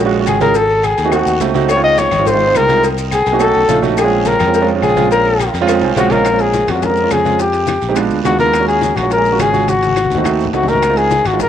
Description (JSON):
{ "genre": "Afro-Cuban jazz", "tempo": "210 BPM", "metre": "4/4", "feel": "straight", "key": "Bb minor", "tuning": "A4 = 442 Hz", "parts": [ { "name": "warm concert grand piano", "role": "accompaniment", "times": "0.0-11.5 s", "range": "Ab3 to Ab5", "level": "-17 LUFS", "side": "right 7 dB", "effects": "cassette tape" }, { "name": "fingered electric bass", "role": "bass", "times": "0.0-11.5 s", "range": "Ab1 to F2", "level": "-21 LUFS", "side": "left 1 dB", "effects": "none" }, { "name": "agogo bells and timbales", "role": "percussion", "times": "0.1-11.5 s", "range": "none", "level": "-27 LUFS", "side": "right 7 dB", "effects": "none" }, { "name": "congas", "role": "percussion", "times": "0.1-11.5 s", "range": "none", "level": "-26 LUFS", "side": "left 7 dB", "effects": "none" }, { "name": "dark trumpet", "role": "melody", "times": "0.3-11.5 s", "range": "Gb4 to Eb5", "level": "-14 LUFS", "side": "left 3 dB", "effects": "cassette tape" }, { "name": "claves", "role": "percussion", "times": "0.3-11.4 s", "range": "none", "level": "-31 LUFS", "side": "left 10 dB", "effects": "none" }, { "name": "cowbell and bongos", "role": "percussion", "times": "0.3-11.5 s", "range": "none", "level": "-25 LUFS", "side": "left 11 dB", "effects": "none" }, { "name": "guiro", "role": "percussion", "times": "0.3-11.5 s", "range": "none", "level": "-33 LUFS", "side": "right 9 dB", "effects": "none" }, { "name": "maracas", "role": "percussion", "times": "0.3-11.5 s", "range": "none", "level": "-34 LUFS", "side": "left 12 dB", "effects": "none" } ], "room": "moderate lush hall reverb, RT60 2.5 s", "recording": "home recording on cassette", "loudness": "-11 LUFS", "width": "side -9 dB against mid", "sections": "0.0-6.3 A section; 6.3-11.5 B section", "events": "trumpet solo 0.0-6.3; grand piano fill 5.7-6.3; drum fill 5.8-6.3, 9.7-10.8", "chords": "0.0 Ebm11 (rootless); 0.6 Ab7b9; 1.7 Dbmaj9; 2.8 N.C.; 3.4 B9; 4.0 Bbm9; 7.4 Fsus2; 8.0 Bb7b9; 8.5 Ebm11; 9.7 Ab7b9; 10.8 Dbmaj9" }